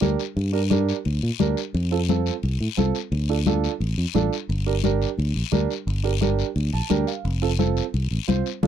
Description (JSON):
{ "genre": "latin, cumbia", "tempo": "174 BPM", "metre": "4/4", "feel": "straight", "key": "G minor", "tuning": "A4 = 440 Hz", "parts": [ { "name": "dark upright piano", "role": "accompaniment", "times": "0.0-8.7 s", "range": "C4 to A5", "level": "-26 LUFS", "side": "right 14 dB", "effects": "none" }, { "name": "fingered electric bass", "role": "bass", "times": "0.0-8.7 s", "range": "F1 to Bb2", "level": "-23 LUFS", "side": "equal", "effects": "none" }, { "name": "congas", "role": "percussion", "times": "0.0-8.7 s", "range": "none", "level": "-26 LUFS", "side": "left 8 dB", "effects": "none" }, { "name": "guiro", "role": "percussion", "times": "0.0-8.7 s", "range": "none", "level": "-34 LUFS", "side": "left 20 dB", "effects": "none" } ], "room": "little or no reverb", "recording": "dry, close 1970s-style studio recording", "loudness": "-21 LUFS", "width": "side -9 dB against mid", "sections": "0.0-8.7 A section", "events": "upright piano fill 6.6-7.2", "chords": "0.0 Gm; 1.7 F; 3.1 Dm; 4.5 Gm; 7.2 F" }